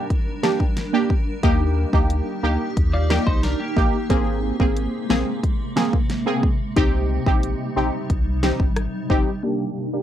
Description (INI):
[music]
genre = dancehall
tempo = 90 BPM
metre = 4/4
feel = straight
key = C minor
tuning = A4 = 439 Hz
[part]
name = synth brass stab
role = accompaniment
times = 0.0-10.0 s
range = Bb3 to Ab4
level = -22 LUFS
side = right 1 dB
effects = chorus, phaser, low-pass filter
[part]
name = granular cloud pad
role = sustained chords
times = 0.0-10.0 s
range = G2 to Bb4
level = -29 LUFS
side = equal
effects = built-in reverb, sidechain pumping, low-pass filter
[part]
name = pop drum kit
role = drums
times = 0.1-9.3 s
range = hi-hat, kick drum, rim click, snare drum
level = -21 LUFS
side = equal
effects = none
[part]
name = warm sub bass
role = bass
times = 1.4-9.2 s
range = G1 to Eb2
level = -23 LUFS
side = equal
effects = none
[part]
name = twelve-string electric guitar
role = arpeggios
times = 2.9-4.1 s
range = Bb3 to D5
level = -27 LUFS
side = left 1 dB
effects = spring reverb
[sound]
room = light reverb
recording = cassette tape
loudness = -19 LUFS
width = side -11 dB against mid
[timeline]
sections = 0.0-9.4 A section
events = none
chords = 0.0 Gm; 1.4 Eb; 4.1 Abadd9; 6.8 Cm; 9.4 Gm